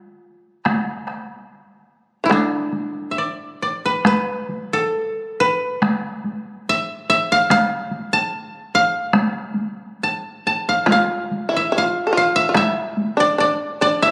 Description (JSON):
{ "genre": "japanese traditional, Japanese chamber music", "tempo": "67-76 BPM", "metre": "2/4", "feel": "rubato", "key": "unclear", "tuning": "A4 = 443 Hz", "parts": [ { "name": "koto", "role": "melody", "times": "0.0-14.1 s", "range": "D4 to A5", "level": "-21 LUFS", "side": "equal", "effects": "none" }, { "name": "shamisen", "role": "second line", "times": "0.0-3.1, 10.9-14.1 s", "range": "D3 to A4", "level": "-23 LUFS", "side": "equal", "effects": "none" }, { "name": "taiko ensemble", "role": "percussion", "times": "0.7-13.2 s", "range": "none", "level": "-23 LUFS", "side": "equal", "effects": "none" } ], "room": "moderate concert hall reverb, RT60 2.0 s", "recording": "recorded on a phone in the room, studio ambience, compression", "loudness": "-20 LUFS", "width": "mono", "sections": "0.0-4.0 A section; 4.0-14.1 B section", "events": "none", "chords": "none" }